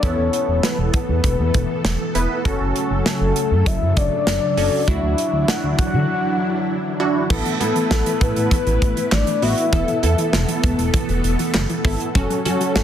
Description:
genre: synth-pop.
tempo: 99 BPM.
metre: 4/4.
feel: straight.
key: A major.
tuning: A4 = 440 Hz.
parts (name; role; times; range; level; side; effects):
soft octave-layered synth lead; melody; 0.0-12.8 s; A4 to F#5; -23 LUFS; left 4 dB; chorus, tremolo, tape echo.
funky polysynth comp; accompaniment; 0.0-12.8 s; B3 to B4; -23 LUFS; right 1 dB; chorus.
string machine, cellos; sustained chords; 0.0-12.8 s; C#3 to B4; -24 LUFS; equal; ensemble chorus.
smooth gliding synth bass; bass; 0.0-12.8 s; E1 to D3; -21 LUFS; equal; none.
modern studio drum kit; drums; 0.0-12.8 s; crash cymbal, handclaps, hi-hat, kick drum, snare drum; -22 LUFS; right 1 dB; none.
soft round pluck; arpeggios; 7.3-12.8 s; E3 to B3; -28 LUFS; left 2 dB; chorus, tape echo.
room: moderate plate reverb, RT60 1.7 s, small room ambience.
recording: dense, heavily limited modern master.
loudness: -17 LUFS.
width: side -10 dB against mid.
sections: 0.0-7.3 A section; 7.3-12.8 B section.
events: silent gap 6.1-7.3.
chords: 0.0 Esus4; 2.5 F#m; 4.9 Dadd9; 7.3 Asus2; 9.7 Esus4; 12.2 F#m.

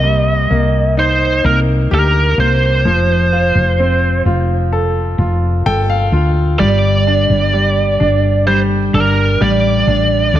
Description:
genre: pop ballad.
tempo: 64 BPM.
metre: 4/4.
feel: straight.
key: G minor.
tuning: A4 = 440 Hz.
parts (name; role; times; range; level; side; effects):
biting lead guitar; melody; 0.0-10.4 s; Bb4 to Eb5; -15 LUFS; right 2 dB; overdrive.
bright concert grand piano; accompaniment; 0.0-10.4 s; C3 to G5; -18 LUFS; left 1 dB; none.
woody fretless electric bass; bass; 0.0-10.4 s; F1 to D2; -14 LUFS; equal; none.
room: light reverb, small room ambience.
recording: none.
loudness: -11 LUFS.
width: side -12 dB against mid.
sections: 0.0-10.4 A section.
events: grand piano fill 5.2-6.6.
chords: 0.0 Cm7; 2.9 F; 6.6 G5.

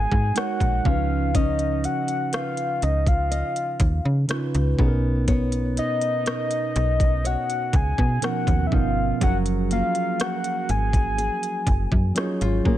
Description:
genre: contemporary R&B.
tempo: 61 BPM.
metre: 4/4.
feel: straight.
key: unclear.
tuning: A4 = 440 Hz.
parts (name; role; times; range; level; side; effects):
soft octave-layered synth lead; melody; 0.0-12.2 s; D#5 to G#5; -26 LUFS; left 2 dB; chorus.
mellow tine electric piano; accompaniment; 0.0-12.8 s; B2 to C#5; -28 LUFS; moving between right 1 dB and right 9 dB; auto-pan.
nylon-string guitar; arpeggios; 0.0-12.8 s; F#3 to D#5; -32 LUFS; left 5 dB; none.
slap-like FM bass; bass; 0.0-12.8 s; F#1 to C#3; -24 LUFS; equal; none.
trap drum kit; drums; 0.1-12.8 s; hi-hat, kick drum, rim click; -23 LUFS; equal; vintage 12-bit sampler grit.
room: little or no reverb.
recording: none.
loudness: -20 LUFS.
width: side -13 dB against mid.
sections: 0.0-12.8 A section.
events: none.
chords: 0.0 G#m9; 0.9 C#9; 4.8 Bmaj9; 9.2 F#maj9.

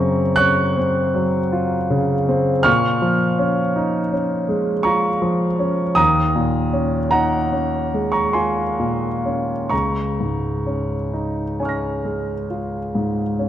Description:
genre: classical, impressionist solo piano.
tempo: 42-55 BPM (dotted quarters).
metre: 9/8.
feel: rubato.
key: Db major.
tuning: A4 = 443 Hz.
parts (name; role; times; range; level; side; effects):
warm concert grand piano; solo; 0.0-13.5 s; Db2 to Bb6; -17 LUFS; equal; none.
room: wet concert hall reverb, RT60 2.4 s.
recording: dark, warm production.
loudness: -17 LUFS.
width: side -11 dB against mid.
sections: 0.0-13.5 A section.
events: none.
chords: 0.0 Gbmaj7#11; 2.7 Bbm7; 6.0 Ebm11; 9.7 Db6.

